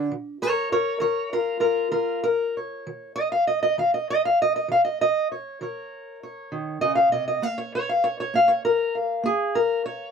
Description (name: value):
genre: acoustic country blues, solo or duo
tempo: 66 BPM (dotted quarters)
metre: 12/8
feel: straight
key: unclear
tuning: A4 = 435 Hz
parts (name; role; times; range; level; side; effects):
- fingerpicked steel-string acoustic guitar; solo; 0.0-10.1 s; C3 to F5; -21 LUFS; equal; none
room: light reverb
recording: close, detailed microphones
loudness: -21 LUFS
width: side -6 dB against mid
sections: 0.0-10.1 A section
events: steel-string acoustic guitar solo 0.0-10.1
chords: 0.1 Eb5; 7.4 Bb5